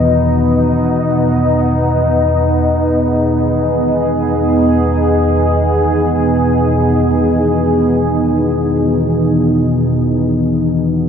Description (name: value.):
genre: dark ambient drone.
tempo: free time.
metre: none.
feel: none.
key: unclear.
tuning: A4 = 440 Hz.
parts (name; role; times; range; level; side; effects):
deep dark ambient pad; sustained chords; 0.0-11.1 s; B3 to D#5; -13 LUFS; equal; chorus, built-in reverb.
analog drone; drone; 0.0-11.1 s; E2 to B2; -16 LUFS; equal; chorus.
quartz singing bowl; texture; 0.0-11.1 s; none; barely audible; none; none.
room: wet huge ambient reverb, RT60 7.1 s.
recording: dreamy mix soaked in reverb.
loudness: -11 LUFS.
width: side -7 dB against mid.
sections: 0.0-11.1 A section.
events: none.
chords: 0.0 G#m; 8.4 B.